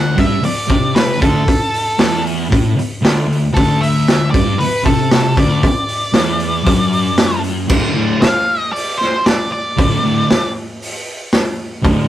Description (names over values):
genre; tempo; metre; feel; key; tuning
garage rock duo or trio; 116 BPM; 4/4; straight; D major; A4 = 441 Hz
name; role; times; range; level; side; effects
octave-fuzz lead guitar; melody; 0.0-10.5 s; A4 to F#5; -18 LUFS; equal; distortion
thick fuzz guitar; riff; 0.0-12.0 s; D2 to D3; -16 LUFS; equal; distortion
raw garage drum kit; drums; 0.2-12.0 s; crash cymbal, hi-hat, kick drum, snare drum; -16 LUFS; equal; none
room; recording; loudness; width
moderate studio ambience, RT60 0.5 s; rough rehearsal-room recording, warm saturation; -12 LUFS; side -12 dB against mid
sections
0.0-7.7 A section; 7.7-12.1 B section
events
lead electric guitar solo 7.7-12.1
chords
0.0 D; 7.7 D5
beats
0.43 0.95 | 1.47 1.99 2.51 3.03 | 3.55 4.07 4.58 5.10 | 5.62 6.14 6.66 7.18 | 7.69 8.21 8.73 9.25 | 9.77 10.28 10.80 11.32 | 11.84